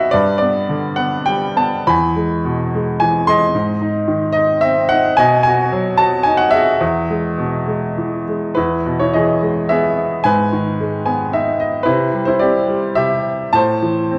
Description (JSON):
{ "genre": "classical, lyrical solo piano", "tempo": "98-114 BPM", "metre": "3/4", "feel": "rubato", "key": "E major", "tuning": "A4 = 443 Hz", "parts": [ { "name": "clear upright piano", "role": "solo", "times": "0.0-14.2 s", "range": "E2 to C6", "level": "-16 LUFS", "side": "equal", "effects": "none" } ], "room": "moderate concert hall reverb, RT60 1.8 s", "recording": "dark, warm production", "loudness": "-16 LUFS", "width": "mono", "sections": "0.0-8.6 A section; 8.6-14.2 B section", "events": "upright piano fill 10.8-11.9", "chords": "0.1 G; 1.9 E; 3.5 G#; 5.2 B; 6.8 E; 10.2 G#m; 11.9 C; 13.5 Am" }